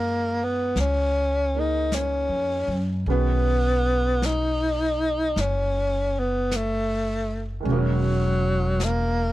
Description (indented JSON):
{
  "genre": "jazz ballad",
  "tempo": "52 BPM",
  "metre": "4/4",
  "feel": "swing 68% on 8ths",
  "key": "unclear",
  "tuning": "A4 = 444 Hz",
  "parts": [
    { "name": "breathy tenor saxophone", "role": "melody", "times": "0.0-9.3 s", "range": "F#3 to D#4", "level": "-24 LUFS", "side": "equal", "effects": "none" },
    { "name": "warm concert grand piano", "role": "accompaniment", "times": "0.0-9.3 s", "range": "D#3 to B4", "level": "-33 LUFS", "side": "right 7 dB", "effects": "none" },
    { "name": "upright bass", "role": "bass", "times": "0.0-9.3 s", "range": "E1 to F#2", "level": "-26 LUFS", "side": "equal", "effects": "none" },
    { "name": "jazz brush drum kit", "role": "drums", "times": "0.8-9.3 s", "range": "brushed snare drum, hi-hat, snare drum", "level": "-36 LUFS", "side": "left 2 dB", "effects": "none" }
  ],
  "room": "little or no reverb",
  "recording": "close, detailed microphones",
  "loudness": "-21 LUFS",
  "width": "side -16 dB against mid",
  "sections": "0.0-9.3 A section",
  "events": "none",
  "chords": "0.0 F#add9; 3.1 B; 7.7 Emaj13"
}